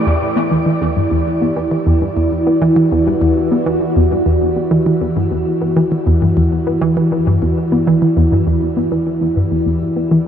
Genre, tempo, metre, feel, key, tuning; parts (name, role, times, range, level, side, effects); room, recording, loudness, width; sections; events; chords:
ambient, sequencer-driven space music; 100 BPM; 4/4; straight; E minor; A4 = 440 Hz
sweeping resonant pad; sustained chords; 0.0-10.3 s; E3 to D5; -16 LUFS; equal; lush chorus, shimmer reverb
analog pluck; riff; 0.1-10.2 s; E2 to B3; -15 LUFS; equal; chorus, ping-pong delay
moderate huge ambient reverb, RT60 9.1 s; dark, warm production; -13 LUFS; side -9 dB against mid
0.1-10.3 A section
filter sweep on synth arpeggio sound 0.1-10.3
0.1 Em7